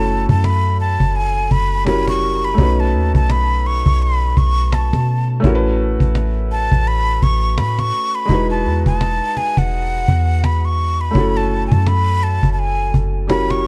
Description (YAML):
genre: contemporary R&B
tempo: 84 BPM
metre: 4/4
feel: swing 58% on 16ths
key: F# dorian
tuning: A4 = 440 Hz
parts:
  - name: breathy mellow silver concert flute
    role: melody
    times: 0.0-13.7 s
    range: F#5 to C#6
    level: -23 LUFS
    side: equal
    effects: tape echo
  - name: felt-muted upright piano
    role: accompaniment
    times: 0.0-13.7 s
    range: G3 to B4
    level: -25 LUFS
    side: equal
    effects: none
  - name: soft 808-style bass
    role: bass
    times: 0.0-13.7 s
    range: E1 to B2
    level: -20 LUFS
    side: equal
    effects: none
  - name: cajon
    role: drums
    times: 0.1-13.6 s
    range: none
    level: -21 LUFS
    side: equal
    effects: none
room: little or no reverb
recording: worn, warbling old tape, cassette tape, warbly pitch drift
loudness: -17 LUFS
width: mono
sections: 0.0-13.7 A section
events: none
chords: 0.0 F#m7; 1.9 F#7b9; 2.6 B9; 5.4 A69; 8.3 Emaj9; 11.2 F#m7